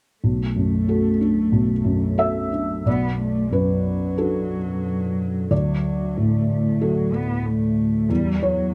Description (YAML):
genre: neoclassical piano and strings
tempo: 92 BPM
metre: 4/4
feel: rubato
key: B minor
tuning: A4 = 440 Hz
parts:
  - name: warm cello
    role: second line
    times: 0.2-8.7 s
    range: F#3 to B3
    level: -26 LUFS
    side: equal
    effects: none
  - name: felt-muted upright piano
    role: accompaniment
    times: 0.2-8.7 s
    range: B1 to E5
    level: -24 LUFS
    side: equal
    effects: none
room: little or no reverb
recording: close, detailed microphones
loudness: -22 LUFS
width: mono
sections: 0.2-2.9 A section; 2.9-8.7 B section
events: none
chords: 0.2 Bm7; 5.5 D; 8.1 Emadd9